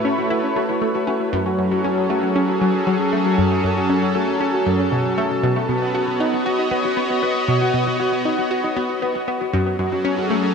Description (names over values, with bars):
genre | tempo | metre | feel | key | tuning
ambient | 117 BPM | 4/4 | straight | F# dorian | A4 = 445 Hz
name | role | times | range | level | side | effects
lush unison pad | sustained chords | 0.0-10.5 s | F#3 to D#5 | -20 LUFS | equal | chorus
concert harp | arpeggios | 0.0-10.5 s | F#4 to C#5 | -26 LUFS | left 3 dB | auto-pan, tape echo
analog pluck | riff | 0.0-10.4 s | F#2 to F#4 | -22 LUFS | equal | chorus, phaser, tape echo
room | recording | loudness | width
wet plate reverb, RT60 2.5 s | dreamy mix soaked in reverb | -17 LUFS | side -6 dB against mid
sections
0.0-10.5 A section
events
none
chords
0.0 A; 1.3 F#madd9; 5.4 Badd9; 9.5 F#madd9